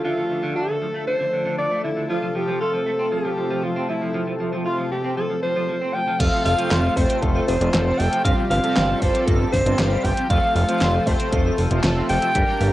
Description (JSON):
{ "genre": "synthwave", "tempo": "117 BPM", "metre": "4/4", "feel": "straight", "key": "F major", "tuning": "A4 = 439 Hz", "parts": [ { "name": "breathy alto saxophone", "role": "melody", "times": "0.0-12.7 s", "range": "E4 to G5", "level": "-24 LUFS", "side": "equal", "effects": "cassette tape, tape echo, plate reverb" }, { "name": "lush unison pad", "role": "sustained chords", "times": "0.0-12.7 s", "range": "C3 to E5", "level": "-29 LUFS", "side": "left 1 dB", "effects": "chorus, sidechain pumping, cassette tape, plate reverb" }, { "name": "clean electric guitar", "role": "riff", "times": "0.0-12.7 s", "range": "C3 to F4", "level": "-28 LUFS", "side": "right 2 dB", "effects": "wide subtle chorus, low-pass filter, cassette tape, tape echo" }, { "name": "airy dreamy lead", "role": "second line", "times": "6.2-12.7 s", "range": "A4 to G5", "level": "-28 LUFS", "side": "equal", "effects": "chorus, cassette tape, analog delay, plate reverb" }, { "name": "analog synth brass", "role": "stabs", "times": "6.2-12.7 s", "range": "G3 to C5", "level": "-26 LUFS", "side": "equal", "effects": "chorus, cassette tape, plate reverb" }, { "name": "fat analog bass", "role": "bass", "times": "6.2-12.7 s", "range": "F1 to G1", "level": "-22 LUFS", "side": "equal", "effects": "sidechain pumping" }, { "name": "electronic kick drum", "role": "drums", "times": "6.2-12.5 s", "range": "none", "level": "-23 LUFS", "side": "equal", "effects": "none" }, { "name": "pop drum kit", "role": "drums", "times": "6.2-12.7 s", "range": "crash cymbal, handclaps, hi-hat, snare drum", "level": "-26 LUFS", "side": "equal", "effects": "low-pass filter on hats, low-pass filter on cymbals, low-pass filter on snare" } ], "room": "moderate studio reverb, RT60 0.6 s", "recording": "home recording on cassette, lossy compression artefacts", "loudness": "-18 LUFS", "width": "side -15 dB against mid", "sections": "0.0-6.2 A section; 6.2-12.7 B section", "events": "filter sweep on clean electric guitar 0.0-6.2", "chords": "0.0 Dmadd9; 2.1 F; 8.2 Csus4/G; 10.3 F" }